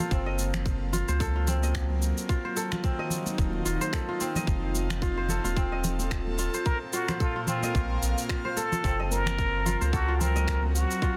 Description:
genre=organic downtempo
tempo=110 BPM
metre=4/4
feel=swing 56% on 16ths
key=unclear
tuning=A4 = 444 Hz
part: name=airy breathy pad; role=sustained chords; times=0.0-11.2 s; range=Bb2 to F5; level=-38 LUFS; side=equal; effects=chorus, sidechain pumping, shimmer reverb
part: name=kora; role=arpeggios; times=0.0-11.2 s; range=C4 to Eb5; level=-35 LUFS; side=equal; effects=tape echo, shimmer reverb
part: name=congas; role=percussion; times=0.0-10.7 s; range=none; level=-38 LUFS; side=equal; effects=none
part: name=warm sub bass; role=bass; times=0.1-10.9 s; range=Eb1 to Db2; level=-31 LUFS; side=equal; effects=sidechain pumping
part: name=electronic kick drum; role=drums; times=0.1-11.1 s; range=none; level=-31 LUFS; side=equal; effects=none
part: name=electronic shaker and finger snaps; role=drums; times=0.1-11.1 s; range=none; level=-39 LUFS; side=equal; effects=soft clipping on snare
part: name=trumpet with plunger mute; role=melody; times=6.7-11.2 s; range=F4 to Bb4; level=-33 LUFS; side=equal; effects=tape echo, shimmer reverb
room=light reverb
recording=dense, heavily limited modern master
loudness=-28 LUFS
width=mono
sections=0.0-11.2 A section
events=none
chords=0.1 Gb; 2.3 Ebmadd9; 4.5 F; 6.7 Bb5; 8.8 Gb

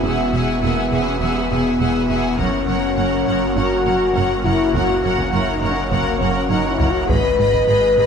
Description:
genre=cinematic, hybrid orchestral and electronic film score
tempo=102 BPM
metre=4/4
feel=straight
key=unclear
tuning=A4 = 438 Hz
part: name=rich symphonic violin section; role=second line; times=0.0-8.1 s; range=D#5 to B5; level=-26 LUFS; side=left 2 dB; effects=none
part: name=rich symphonic viola section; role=accompaniment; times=0.0-8.1 s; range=G#4 to E5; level=-26 LUFS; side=equal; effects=none
part: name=mellow French horn section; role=sustained chords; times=0.0-8.1 s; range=A#3 to B4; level=-19 LUFS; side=left 3 dB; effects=none
part: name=warbly tape-like pad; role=sustained chords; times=0.0-8.1 s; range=G#3 to F#5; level=-26 LUFS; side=equal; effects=chorus, built-in reverb, phaser
part: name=rich symphonic cello section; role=bass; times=0.0-8.1 s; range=E2 to G#2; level=-27 LUFS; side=right 4 dB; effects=none
part: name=snarling distorted saw bass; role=bass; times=0.0-8.1 s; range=E1 to G#1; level=-27 LUFS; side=right 1 dB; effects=distortion
part: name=warm symphonic double bass section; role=bass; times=0.0-8.1 s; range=E1 to G#1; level=-25 LUFS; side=right 6 dB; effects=none
part: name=taiko ensemble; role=drums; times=2.4-8.1 s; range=none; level=-25 LUFS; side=equal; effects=none
room=wet concert hall reverb, RT60 1.9 s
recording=none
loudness=-16 LUFS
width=side -6 dB against mid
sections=0.0-8.1 A section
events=none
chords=0.0 Eadd9; 2.4 F#; 7.1 G#m

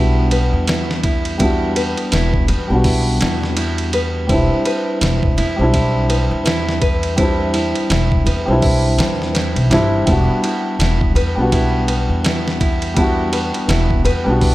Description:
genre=trip hop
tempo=83 BPM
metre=4/4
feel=swing 59% on 16ths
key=E minor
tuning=A4 = 440 Hz
part: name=felt-muted upright piano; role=accompaniment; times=0.0-14.5 s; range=G3 to F#4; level=-19 LUFS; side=equal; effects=harmonic tremolo, vintage 12-bit sampler grit, low-pass filter, tape echo
part: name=nylon-string guitar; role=arpeggios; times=0.0-14.5 s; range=E4 to B4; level=-23 LUFS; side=right 1 dB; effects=tape echo
part: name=upright bass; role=bass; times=0.0-14.5 s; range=E1 to E2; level=-19 LUFS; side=equal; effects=none
part: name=dusty soul sampler-style drum kit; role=drums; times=0.3-14.5 s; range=hi-hat, kick drum, ride cymbal, snare drum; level=-20 LUFS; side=equal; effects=none
room=studio reverb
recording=none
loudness=-14 LUFS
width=side -17 dB against mid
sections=0.0-14.5 A section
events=filter sweep on felt piano 0.0-14.5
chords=0.0 Em7; 4.3 Cadd9/E; 10.1 Em7

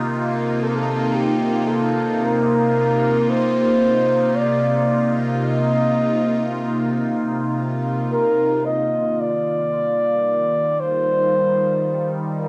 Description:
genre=ambient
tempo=56 BPM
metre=4/4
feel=straight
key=Eb major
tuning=A4 = 440 Hz
part: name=evolving wavetable pad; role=sustained chords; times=0.0-12.5 s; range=C3 to F4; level=-23 LUFS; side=equal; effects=phaser, built-in reverb
part: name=organ-like drone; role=drone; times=0.1-8.8 s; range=none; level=barely audible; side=none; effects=none
part: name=breathy flugelhorn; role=melody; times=0.6-12.5 s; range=G4 to Eb5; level=-22 LUFS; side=equal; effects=cassette tape, plate reverb
room=wet small room ambience, RT60 0.5 s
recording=home recording on cassette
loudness=-20 LUFS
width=mono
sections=0.0-8.7 A section; 8.7-12.5 B section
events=none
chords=0.0 F7sus4; 8.7 Ebmaj9

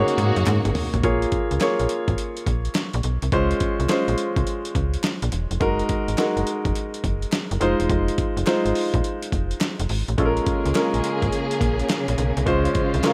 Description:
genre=R&B, new jack swing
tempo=105 BPM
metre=4/4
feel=swing 65% on 16ths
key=Bb minor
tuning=A4 = 440 Hz
part: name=warm grand piano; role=accompaniment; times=0.0-13.1 s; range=Ab3 to Db5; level=-26 LUFS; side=equal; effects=none
part: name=warm studio string section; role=sustained chords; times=0.0-1.0, 10.2-13.1 s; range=Db3 to C5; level=-29 LUFS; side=equal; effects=none
part: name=slap-like FM bass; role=bass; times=0.0-13.0 s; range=E1 to Ab2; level=-26 LUFS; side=equal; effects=none
part: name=dusty soul sampler-style drum kit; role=drums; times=0.1-13.1 s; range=hi-hat, kick drum, snare drum, toms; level=-28 LUFS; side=equal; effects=overdrive
part: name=group handclap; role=percussion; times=0.5-13.1 s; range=none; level=-40 LUFS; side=equal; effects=none
room=light reverb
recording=none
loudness=-22 LUFS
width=mono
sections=0.0-1.0 A section; 1.0-13.1 B section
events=drum fill 0.0-1.0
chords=0.0 Ab9sus4; 1.0 Bbm7; 3.3 Dbmaj7; 5.6 Gb69; 7.6 Fm7; 10.2 Bbm7; 12.5 Dbmaj7

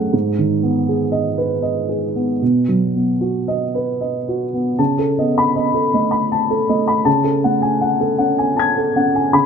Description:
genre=neoclassical minimalist piano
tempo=78 BPM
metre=3/4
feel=uneven beats, rubato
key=unclear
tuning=A4 = 440 Hz
part: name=dark upright piano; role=solo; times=0.0-9.5 s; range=G#2 to G#6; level=-15 LUFS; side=equal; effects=none
room=light reverb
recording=close, detailed microphones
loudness=-15 LUFS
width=side -6 dB against mid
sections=0.0-4.8 A section; 4.8-9.5 B section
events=none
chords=0.1 G#m; 2.4 B; 4.8 B7/C#; 7.1 F#madd9/C#

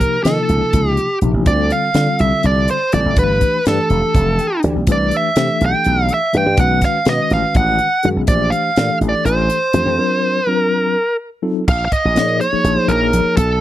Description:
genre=electric jazz fusion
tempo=247 BPM (eighths)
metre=7/8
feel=straight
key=unclear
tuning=A4 = 440 Hz
part: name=dark smooth lead guitar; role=melody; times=0.0-13.6 s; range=A4 to G5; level=-17 LUFS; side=equal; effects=overdrive, slapback echo
part: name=breathy mellow silver concert flute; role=second line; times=0.0-13.6 s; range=A5 to G6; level=-24 LUFS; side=right 13 dB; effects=none
part: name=mellow tine electric piano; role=accompaniment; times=0.0-13.4 s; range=C3 to G5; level=-20 LUFS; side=left 3 dB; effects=fast stereo tremolo
part: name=crisp fusion drum kit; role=drums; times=0.0-13.5 s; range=crash cymbal, hi-hat, kick drum, snare drum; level=-18 LUFS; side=equal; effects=none
part: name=slap bass with an envelope filter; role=bass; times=0.3-13.6 s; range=F1 to Eb3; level=-17 LUFS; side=equal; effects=none
room=little or no reverb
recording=dry, close 1970s-style studio recording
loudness=-13 LUFS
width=side -13 dB against mid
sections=0.0-11.7 A section; 11.7-13.6 B section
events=tine electric piano fill 4.1-4.9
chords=0.0 Eb9; 1.5 Dm7; 3.2 G7; 4.9 Cmaj9; 6.6 B9; 8.3 Bbmaj9#11; 10.0 D7alt; 11.0 F7b9; 11.7 Bbm7

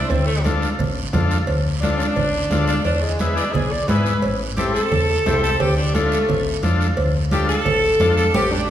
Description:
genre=latin, cumbia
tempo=175 BPM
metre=4/4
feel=straight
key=unclear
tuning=A4 = 440 Hz
part: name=clear saxophone section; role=melody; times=0.0-8.7 s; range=G#3 to D5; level=-21 LUFS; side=equal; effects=none
part: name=hollow-body short-scale fingered electric bass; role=bass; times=0.0-8.7 s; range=A1 to G#2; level=-21 LUFS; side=equal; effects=none
part: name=congas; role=percussion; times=0.1-8.4 s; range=none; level=-25 LUFS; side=right 1 dB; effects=none
part: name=cowbell and timbales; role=percussion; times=0.1-8.5 s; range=none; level=-29 LUFS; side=right 2 dB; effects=none
part: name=guiro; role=percussion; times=0.1-8.7 s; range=none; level=-34 LUFS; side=right 6 dB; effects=none
part: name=combo organ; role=accompaniment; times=0.4-8.3 s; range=B3 to A4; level=-25 LUFS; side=left 2 dB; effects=none
room=wet recital hall reverb, RT60 1.7 s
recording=recorded in a church or concert hall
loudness=-17 LUFS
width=side -11 dB against mid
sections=0.0-8.7 A section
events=saxophone section solo 0.0-8.7; drum fill 8.3-8.7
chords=0.1 Dm; 2.9 E; 4.2 Am; 5.6 Dm

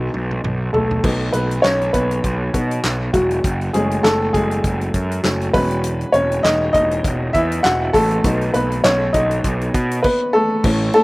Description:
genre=piano-driven pop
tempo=100 BPM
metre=4/4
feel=swing 56% on 16ths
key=unclear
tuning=A4 = 440 Hz
part: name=warm upright piano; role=accompaniment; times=0.0-11.0 s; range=E3 to F#5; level=-17 LUFS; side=equal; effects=none
part: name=fuzz picked electric bass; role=bass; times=0.0-10.9 s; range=E1 to B2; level=-21 LUFS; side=equal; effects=overdrive
part: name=natural country drum kit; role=drums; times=0.1-11.0 s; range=crash cymbal, handclaps, hi-hat, kick drum, ride cymbal, snare drum, toms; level=-23 LUFS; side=equal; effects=none
room=little or no reverb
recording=recorded outdoors, with no room sound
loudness=-15 LUFS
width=side -21 dB against mid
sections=0.0-1.0 A section; 1.0-10.6 B section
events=drum fill 0.0-1.0; upright piano solo 0.0-1.0, 1.0-10.6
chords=0.0 B; 3.4 F#m; 5.5 E6; 8.2 B

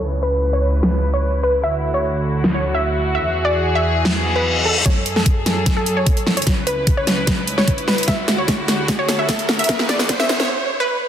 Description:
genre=heavy wobble dubstep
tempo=149 BPM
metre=4/4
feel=half-time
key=F# minor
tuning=A4 = 440 Hz
part: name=wide unison pluck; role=melody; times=0.0-11.0 s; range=A4 to E5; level=-22 LUFS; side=equal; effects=tape echo
part: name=warm studio string section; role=sustained chords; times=0.0-10.5 s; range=C#2 to B4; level=-21 LUFS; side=equal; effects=sidechain pumping, low-pass filter
part: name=downlifter, reverse cymbal and riser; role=sound effects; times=4.2-10.5 s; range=none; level=-24 LUFS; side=equal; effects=none
part: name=dubstep drum kit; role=drums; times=0.8-10.5 s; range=hi-hat, snare drum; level=-20 LUFS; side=equal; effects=overdrive
part: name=electronic kick drum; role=drums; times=4.9-10.2 s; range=none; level=-18 LUFS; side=equal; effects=overdrive
room=moderate lush hall reverb, RT60 1.9 s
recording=dense, heavily limited modern master, high-pass filter, low-pass filter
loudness=-16 LUFS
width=side -9 dB against mid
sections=0.0-4.9 A section; 4.9-11.1 B section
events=filter sweep on string section 0.0-4.9; filter sweep 0.0-4.9, 4.9-11.1; reverse cymbal 4.2-4.9; build-up 4.9-11.1; drum fill 4.9-10.5; riser 4.9-10.5; filter sweep on synth pluck 4.9-11.1; break 10.5-11.1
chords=0.0 C#m7; 1.6 Dadd9; 3.2 Eadd9; 4.9 F#madd9; 6.5 C#m7; 8.1 Dadd9; 9.7 Eadd9

